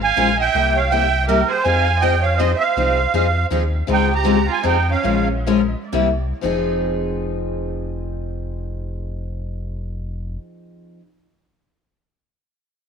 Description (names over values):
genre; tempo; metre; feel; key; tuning
acoustic string swing (jazz manouche); 113-162 BPM; 3/4; swing 61% on 8ths; F minor; A4 = 436 Hz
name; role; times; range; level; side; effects
musette accordion; melody; 0.0-5.3 s; Bb4 to Bb5; -20 LUFS; right 6 dB; tape echo
dark violin; second line; 0.0-5.3 s; Db4 to F5; -24 LUFS; right 8 dB; none
sub bass with octave; bass; 0.0-10.4 s; F1 to F2; -23 LUFS; left 1 dB; none
picked steel-string acoustic guitar; accompaniment; 0.2-11.0 s; C3 to Bb4; -22 LUFS; left 11 dB; none
picked steel-string acoustic guitar; accompaniment; 0.2-11.0 s; C3 to Bb4; -28 LUFS; right 10 dB; none
room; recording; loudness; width
moderate echo chamber reverb, RT60 1.3 s, studio ambience; 1960s-style stereo with parts hard left and right; -16 LUFS; side -6 dB against mid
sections
0.0-3.9 A section; 3.9-6.4 B section; 6.4-9.6 C section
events
slowing down 3.9-6.4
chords
0.0 Bbm7; 0.5 C7; 1.7 Fm7; 3.9 Dbmaj7#11; 4.6 Fm7; 5.0 Bbm7; 5.9 C7; 6.4 Fm7